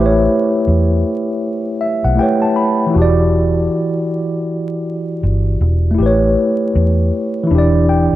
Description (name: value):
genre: lo-fi hip hop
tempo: 79 BPM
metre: 4/4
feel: swing 61% on 16ths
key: unclear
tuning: A4 = 441 Hz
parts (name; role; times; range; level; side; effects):
- tine electric piano; accompaniment; 0.0-8.2 s; E3 to B5; -15 LUFS; equal; medium stereo tremolo, cassette tape
- vintage muted fingered electric bass; bass; 0.0-8.2 s; E1 to E2; -14 LUFS; equal; none
room: moderate spring reverb, RT60 2.6 s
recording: vinyl crackle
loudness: -13 LUFS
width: side -14 dB against mid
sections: 0.0-8.2 A section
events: tine electric piano fill 1.4-2.9, 7.5-8.2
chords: 0.0 A9; 2.9 Em7; 6.0 A9; 7.5 Em7